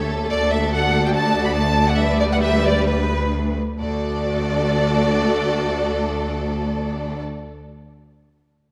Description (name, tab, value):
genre	quick classical-period movement for string orchestra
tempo	122-146 BPM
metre	4/4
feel	rubato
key	D major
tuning	A4 = 440 Hz
part	warm studio violin section	melody	0.0-7.2 s	B4 to B5	-26 LUFS	equal	none
part	warm studio violin section	second line	0.0-7.2 s	A4 to E5	-28 LUFS	equal	none
part	rich studio viola section	accompaniment	0.0-7.2 s	G3 to G4	-28 LUFS	equal	none
part	rich studio cello section	bass	0.0-7.2 s	D2	-27 LUFS	equal	none
part	warm studio double bass section	bass	0.0-7.2 s	D2	-28 LUFS	equal	none
room	moderate scoring stage reverb, RT60 1.9 s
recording	none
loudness	-20 LUFS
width	mono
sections	0.0-3.8 A section; 3.8-7.5 B section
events	slowing down 0.0-3.8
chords	0.3 D; 2.0 G/D; 3.8 D